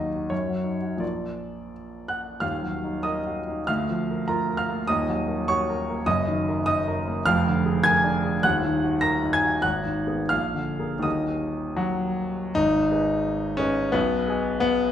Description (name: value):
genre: classical, romantic character piece for solo piano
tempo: 71-105 BPM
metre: 2/4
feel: rubato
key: Eb minor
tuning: A4 = 440 Hz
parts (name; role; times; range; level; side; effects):
- clear grand piano; solo; 0.0-14.9 s; Eb1 to Bb6; -22 LUFS; equal; none
room: wet large studio reverb, RT60 1.2 s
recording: heard from further back in the room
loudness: -22 LUFS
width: side -10 dB against mid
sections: 0.0-2.4 A section; 2.4-12.6 B section; 12.6-14.9 C section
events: none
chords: 0.3 Ebm/Gb; 1.0 Bb; 2.4 Ebm; 3.7 Bb/D; 4.9 Ebm; 6.1 Ebm/Gb; 7.2 Bb7/F; 8.4 Ebm; 9.6 Abm; 10.3 Bb7; 11.0 Ebm; 12.6 G#m; 13.9 G#m/B